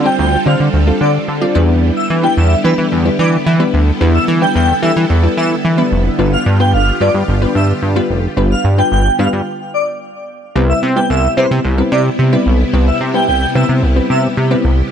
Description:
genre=pop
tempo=110 BPM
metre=4/4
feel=straight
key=C major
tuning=A4 = 442 Hz
part: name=string machine, violas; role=sustained chords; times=0.0-14.9 s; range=C3 to A4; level=-20 LUFS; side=equal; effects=phaser, ensemble chorus
part: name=chorused synth bass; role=bass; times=0.0-14.8 s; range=F1 to E3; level=-13 LUFS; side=equal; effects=none
part: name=airy dreamy lead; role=melody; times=0.1-14.2 s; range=B4 to G5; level=-18 LUFS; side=equal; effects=chorus, phaser, digital delay
part: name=glassy wavetable pluck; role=accompaniment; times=0.1-14.7 s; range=G3 to D5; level=-18 LUFS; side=left 1 dB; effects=chorus
room=light reverb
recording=none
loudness=-11 LUFS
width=side -8 dB against mid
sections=0.0-10.6 A section; 10.6-14.9 A section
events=drop 0.0-10.6, 10.6-14.9; stop 9.5-10.6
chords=0.0 G7sus4; 1.6 Em7; 6.2 G7; 10.6 Cmaj7

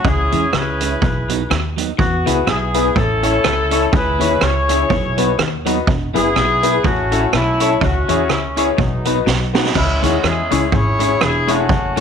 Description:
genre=ska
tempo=124 BPM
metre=4/4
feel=swing 57% on 8ths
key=unclear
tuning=A4 = 440 Hz
part: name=warm horn section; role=melody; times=0.0-12.0 s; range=F#3 to C#5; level=-19 LUFS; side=left 1 dB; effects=none
part: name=upright bass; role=bass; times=0.0-12.0 s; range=E1 to E2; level=-22 LUFS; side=equal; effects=none
part: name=street-band drum kit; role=drums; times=0.0-12.0 s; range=crash cymbal, hi-hat, kick drum, rim click, snare drum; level=-20 LUFS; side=right 4 dB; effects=slapback echo
part: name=clean electric guitar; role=riff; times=0.1-12.0 s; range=E2 to E3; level=-24 LUFS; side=left 9 dB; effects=analog chorus
part: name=clean electric guitar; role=accompaniment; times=0.3-12.0 s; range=F#3 to A4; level=-25 LUFS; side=right 12 dB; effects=lush chorus
part: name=clear upright piano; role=stabs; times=2.3-12.0 s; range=B3 to C#5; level=-21 LUFS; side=left 10 dB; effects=slapback echo
room=moderate echo chamber reverb, RT60 1.6 s, small room ambience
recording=1960s-style stereo with parts hard left and right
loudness=-14 LUFS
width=side -7 dB against mid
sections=0.0-9.8 A section; 9.8-12.0 B section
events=drum fill 9.3-9.8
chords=0.0 C#m; 1.0 B; 2.0 E; 3.0 A; 3.9 C#m; 4.9 B; 5.9 E; 6.8 A; 7.8 C#m; 8.8 B; 9.8 C#m

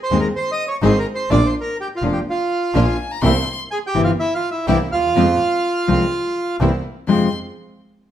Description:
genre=tango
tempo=125 BPM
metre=4/4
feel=rubato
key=F minor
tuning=A4 = 440 Hz
part: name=bandoneon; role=melody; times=0.0-6.6 s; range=E4 to Eb6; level=-20 LUFS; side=right 2 dB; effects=none
part: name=nylon-string guitar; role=accompaniment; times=0.1-7.3 s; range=F2 to Ab4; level=-19 LUFS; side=left 3 dB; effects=none
part: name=clear symphonic string section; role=stabs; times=0.1-7.3 s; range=Ab3 to Ab4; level=-26 LUFS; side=right 3 dB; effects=none
part: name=bright double bass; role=bass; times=0.1-7.3 s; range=F1 to F2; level=-21 LUFS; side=right 2 dB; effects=none
part: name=warm violin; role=second line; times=2.8-3.6, 7.1-7.3 s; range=Ab5 to C6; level=-27 LUFS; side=left 5 dB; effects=none
room=moderate large studio reverb, RT60 1.1 s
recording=none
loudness=-16 LUFS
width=side -11 dB against mid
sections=0.0-7.1 A section; 7.1-8.1 B section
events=none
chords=0.0 Ab; 1.3 Bb; 3.2 C7; 5.1 Fm; 6.6 C7; 7.1 Fm

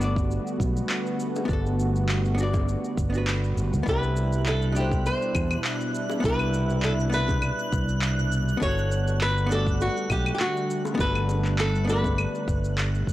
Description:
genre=sunset chillout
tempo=101 BPM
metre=4/4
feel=swing 54% on 16ths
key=unclear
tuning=A4 = 439 Hz
part: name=hollow-body jazz guitar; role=accompaniment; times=0.0-13.1 s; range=B2 to D5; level=-32 LUFS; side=moving between left 3 dB and right 3 dB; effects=auto-pan, analog delay
part: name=lush unison pad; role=sustained chords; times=0.0-13.1 s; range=B2 to F#4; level=-31 LUFS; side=right 1 dB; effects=chorus
part: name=fretless electric bass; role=bass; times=0.0-13.1 s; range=G1 to E2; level=-25 LUFS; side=equal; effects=tube saturation
part: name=electronic shaker, handclaps and claves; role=drums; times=0.0-13.1 s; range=none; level=-32 LUFS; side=left 1 dB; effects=none
part: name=electronic kick drum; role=drums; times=0.2-13.1 s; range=none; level=-28 LUFS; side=equal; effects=none
part: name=bongos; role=percussion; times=1.4-12.2 s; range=none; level=-38 LUFS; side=left 3 dB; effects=none
part: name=flamenco guitar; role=melody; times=3.9-12.7 s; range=F#4 to Db5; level=-29 LUFS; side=equal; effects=analog delay
part: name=twinkling granular texture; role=texture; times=4.4-13.1 s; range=F#6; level=-37 LUFS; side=right 3 dB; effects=built-in reverb
room=little or no reverb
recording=dry, gritty hardware recording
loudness=-22 LUFS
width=side -15 dB against mid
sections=0.0-13.1 A section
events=none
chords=0.0 Gmaj9; 3.9 Cmaj9; 8.6 Gmaj9

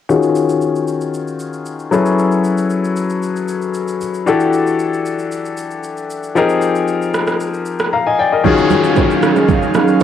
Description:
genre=amapiano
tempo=115 BPM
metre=4/4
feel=straight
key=unclear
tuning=A4 = 441 Hz
part: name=clear concert grand piano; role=accompaniment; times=0.1-10.0 s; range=Eb3 to Bb5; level=-15 LUFS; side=left 4 dB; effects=low-pass filter, cassette tape
part: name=deep house drum kit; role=drums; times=0.1-10.0 s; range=kick drum, rim click, shaker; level=-22 LUFS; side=right 2 dB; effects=overdrive, cassette tape
part: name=airy breathy pad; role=sustained chords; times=8.4-10.0 s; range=Gb3 to F5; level=-15 LUFS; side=right 3 dB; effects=chorus, cassette tape
part: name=congas and bongos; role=percussion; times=8.4-10.0 s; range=none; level=-19 LUFS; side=right 10 dB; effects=none
part: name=downlifter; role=sound effects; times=8.4-10.0 s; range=none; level=-22 LUFS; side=right 2 dB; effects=none
room=moderate studio reverb, RT60 0.6 s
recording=home recording on cassette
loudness=-14 LUFS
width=side -10 dB against mid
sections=0.1-8.4 A section; 8.4-10.0 B section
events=filter sweep on grand piano 0.1-8.4; drums muted 7.9-8.4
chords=0.1 Ebm11; 1.9 Gbm11; 4.3 Em11; 6.4 Fm11; 8.4 Ebm11

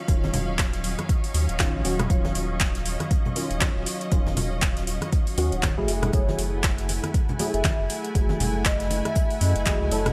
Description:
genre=deep house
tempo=119 BPM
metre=4/4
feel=swing 58% on 16ths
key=Eb minor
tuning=A4 = 436 Hz
part: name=warm analog pad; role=sustained chords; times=0.0-10.1 s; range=Gb3 to Db6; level=-39 LUFS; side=equal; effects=chorus, sidechain pumping
part: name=percussive organ stab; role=stabs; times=0.0-10.1 s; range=Eb3 to A4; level=-33 LUFS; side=equal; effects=ensemble chorus, sidechain pumping
part: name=bright symphonic string section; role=texture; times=0.0-10.1 s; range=Gb3 to Ab5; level=-39 LUFS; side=equal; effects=sidechain pumping
part: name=round analog bass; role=bass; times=0.1-10.1 s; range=Eb1 to Gb2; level=-30 LUFS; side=equal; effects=sidechain pumping
part: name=deep house drum kit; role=drums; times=0.1-10.1 s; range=handclaps, hi-hat, rim click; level=-32 LUFS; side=equal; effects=studio reverb
part: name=electronic kick drum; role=drums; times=0.1-9.8 s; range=none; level=-26 LUFS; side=equal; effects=studio reverb
part: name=jazz brush drum kit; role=drums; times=0.1-10.1 s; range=hi-hat, snare drum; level=-43 LUFS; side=equal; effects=none
part: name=congas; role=percussion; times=0.2-10.1 s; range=none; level=-33 LUFS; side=equal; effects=none
part: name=vibraphone with soft mallets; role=melody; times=6.1-10.1 s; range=Db5 to Fb5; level=-34 LUFS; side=equal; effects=delay
room=little or no reverb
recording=none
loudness=-24 LUFS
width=mono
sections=0.0-10.1 A section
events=none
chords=0.0 Ebm9; 5.9 Gbm9

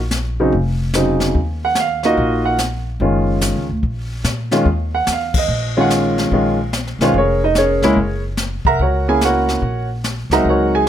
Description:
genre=jazz piano trio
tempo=145 BPM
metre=4/4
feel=swing 66% on 8ths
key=unclear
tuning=A4 = 440 Hz
part: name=upright bass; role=bass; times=0.0-10.9 s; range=F1 to Bb2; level=-21 LUFS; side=equal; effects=none
part: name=jazz brush drum kit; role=drums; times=0.1-10.9 s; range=brushed snare drum, hi-hat, kick drum, ride cymbal, snare drum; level=-22 LUFS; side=left 2 dB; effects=none
part: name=warm grand piano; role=melody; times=0.4-10.9 s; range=Db3 to Bb5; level=-16 LUFS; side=right 1 dB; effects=none
room=light reverb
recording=close, detailed microphones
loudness=-15 LUFS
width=side -10 dB against mid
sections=0.0-10.9 A section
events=band accent 5.3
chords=0.0 Bbmadd9; 1.4 Eb7sus2; 6.3 Bbm7; 8.0 Gb7

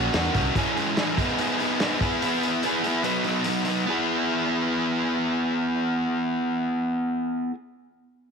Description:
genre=indie rock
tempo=145 BPM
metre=4/4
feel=straight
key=E lydian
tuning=A4 = 441 Hz
part: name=fuzz guitar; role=riff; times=0.0-7.5 s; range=E3 to G#4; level=-23 LUFS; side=equal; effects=distortion
part: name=modern bright picked electric bass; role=bass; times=0.0-0.5 s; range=C2 to E2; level=-28 LUFS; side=equal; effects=none
part: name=vintage drum kit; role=drums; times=0.1-3.7 s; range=hi-hat, kick drum, snare drum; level=-30 LUFS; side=equal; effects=none
room=light reverb, small room ambience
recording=none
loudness=-22 LUFS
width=side -5 dB against mid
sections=0.0-3.9 A section; 3.9-7.2 B section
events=none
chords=0.0 F#; 0.6 C#m; 1.2 G#m; 2.0 E; 3.0 B; 3.9 E

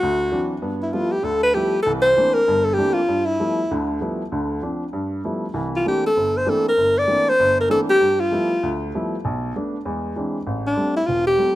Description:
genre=jazz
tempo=195 BPM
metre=4/4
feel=swing 63% on 8ths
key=G mixolydian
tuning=A4 = 436 Hz
part: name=clear alto saxophone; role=melody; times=0.0-11.6 s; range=D4 to D5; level=-18 LUFS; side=equal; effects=none
part: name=warm upright piano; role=accompaniment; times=0.0-11.6 s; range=E1 to E4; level=-24 LUFS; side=equal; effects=none
room=light reverb, studio reverb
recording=rough home demo mix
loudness=-18 LUFS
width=side -15 dB against mid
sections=0.6-11.6 A section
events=none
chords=0.0 D9; 0.6 G13; 1.9 C13; 3.1 G13; 4.3 Dm7; 4.9 G13; 5.5 C13; 8.0 G13; 9.2 Bm7; 9.8 Eaug7; 10.5 Am7

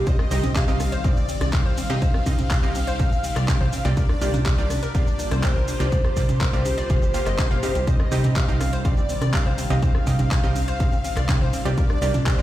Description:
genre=progressive house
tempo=123 BPM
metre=4/4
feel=straight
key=C minor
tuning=A4 = 440 Hz
part: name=warm velvety synth lead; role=melody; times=0.0-12.4 s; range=C5 to F5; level=-30 LUFS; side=equal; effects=chorus, sidechain pumping, digital delay
part: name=soft supersaw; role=second line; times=0.0-12.4 s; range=C5 to F5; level=-36 LUFS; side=equal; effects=sidechain pumping, digital delay
part: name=evolving wavetable pad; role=sustained chords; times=0.0-12.4 s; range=C3 to G4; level=-34 LUFS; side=equal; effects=phaser, built-in reverb, sidechain pumping
part: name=wide unison pluck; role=stabs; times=0.0-12.4 s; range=C3 to G5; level=-29 LUFS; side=right 2 dB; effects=sidechain pumping, digital delay
part: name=plucky analog bass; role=bass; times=0.0-12.4 s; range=G1 to C2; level=-25 LUFS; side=equal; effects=sidechain pumping
part: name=glassy wavetable pluck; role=arpeggios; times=0.1-12.4 s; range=C4 to F5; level=-33 LUFS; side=left 3 dB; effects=chorus, sidechain pumping, digital delay
part: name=electronic kick drum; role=drums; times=0.1-12.4 s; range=none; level=-21 LUFS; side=equal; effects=small room ambience
part: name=pop drum kit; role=drums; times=0.1-12.4 s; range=handclaps, hi-hat, rim click, shaker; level=-32 LUFS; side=equal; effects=small room ambience
part: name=electronic toms and congas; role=percussion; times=0.4-12.2 s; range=none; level=-28 LUFS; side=right 2 dB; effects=sidechain pumping on toms, small room ambience, sidechain pumping on perc
room=little or no reverb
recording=played on a big sound system in a bare room, large studio reverb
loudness=-19 LUFS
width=side -14 dB against mid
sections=0.0-12.4 A section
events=none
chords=0.1 Cm; 4.0 Gm7; 7.9 Cm; 11.8 Gm7

